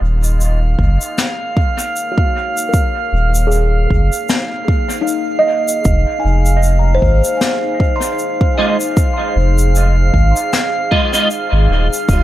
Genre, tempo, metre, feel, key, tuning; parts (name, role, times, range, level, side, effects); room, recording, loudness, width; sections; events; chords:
ambient dub; 77 BPM; 4/4; swing 56% on 16ths; A4 = 440 Hz
deep dark ambient pad; sustained chords; 0.0-12.2 s; Bb3 to F5; -26 LUFS; left 2 dB; chorus, built-in reverb
warm sub bass; bass; 0.0-12.2 s; Eb1 to Ab1; -13 LUFS; equal
drifting glass-harmonics texture; texture; 0.2-12.2 s; F5; -21 LUFS; right 3 dB; chorus, built-in reverb
shaker and snare drum; drums; 0.2-12.2 s; -21 LUFS; left 2 dB; dub echo
electronic kick drum; drums; 0.8-12.2 s; -15 LUFS; equal
buzzing kalimba; arpeggios; 2.1-12.2 s; Eb4 to C6; -20 LUFS; equal; low-pass filter, dub echo
electric guitar at the edge of break-up; stabs; 8.6-11.3 s; Ab3 to Eb5; -19 LUFS; right 2 dB; ensemble chorus, low-pass filter, dub echo
light reverb, studio ambience; -12 LUFS; side -14 dB against mid
0.0-12.2 A section
fade-in on ambient pad 0.0-12.2; filter sweep on kalimba 0.0-12.2
0.0 Ebm9; 5.9 Fm7